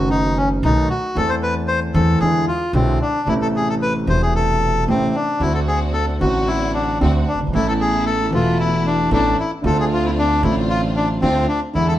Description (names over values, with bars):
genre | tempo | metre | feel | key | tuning
tango | 114 BPM | 4/4 | rubato | unclear | A4 = 441 Hz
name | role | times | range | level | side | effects
bandoneon | melody | 0.0-11.9 s | C4 to C5 | -20 LUFS | left 1 dB | none
warm concert grand piano | accompaniment | 0.0-12.0 s | E1 to A4 | -20 LUFS | right 1 dB | none
upright bass | bass | 0.0-12.0 s | E1 to E2 | -23 LUFS | equal | none
warm studio string section | stabs | 5.4-12.0 s | G#3 to F#4 | -28 LUFS | equal | none
room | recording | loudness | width
moderate stone room reverb, RT60 1.0 s | band playing live in one room | -16 LUFS | side -13 dB against mid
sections
0.0-12.0 A section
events
none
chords
0.0 B7; 1.2 Am/E; 2.2 E7; 3.3 Amadd9; 5.4 D7; 7.5 Asus2; 9.6 Dm7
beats
0.11 0.64 | 1.17 1.69 2.21 2.74 | 3.27 3.80 4.33 4.87 | 5.41 5.94 6.48 7.01 | 7.53 8.06 8.59 9.11 | 9.64 10.17 10.70 11.22 | 11.75